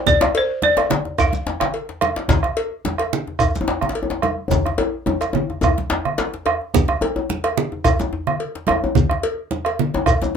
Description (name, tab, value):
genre	west african traditional, West African drum ensemble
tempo	108 BPM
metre	4/4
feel	straight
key	unclear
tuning	A4 = 440 Hz
part	balafon	melody	0.0-2.0 s	C5 to F5	-18 LUFS	left 1 dB	none
part	bombo	percussion	0.1-10.2 s	none	-20 LUFS	right 3 dB	none
part	congas	percussion	0.1-10.3 s	none	-23 LUFS	right 3 dB	none
part	djembe	percussion	0.1-10.4 s	none	-26 LUFS	left 2 dB	none
part	shekere	percussion	0.1-10.3 s	none	-29 LUFS	right 2 dB	none
part	djembe	percussion	0.2-10.3 s	none	-23 LUFS	left 3 dB	none
part	cowbell	percussion	0.3-10.2 s	none	-26 LUFS	left 3 dB	none
room	wet small room ambience, RT60 0.5 s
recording	minimal, uncompressed stereo recording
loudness	-18 LUFS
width	side -7 dB against mid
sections	0.0-6.7 A section; 6.7-10.4 B section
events	drum fill 4.5-6.7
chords	none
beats	| 0.07 0.62 1.18 1.74 | 2.29 2.85 3.41 3.96 | 4.52 5.07 5.63 6.19 | 6.74 7.30 7.85 8.41 | 8.96 9.52 10.07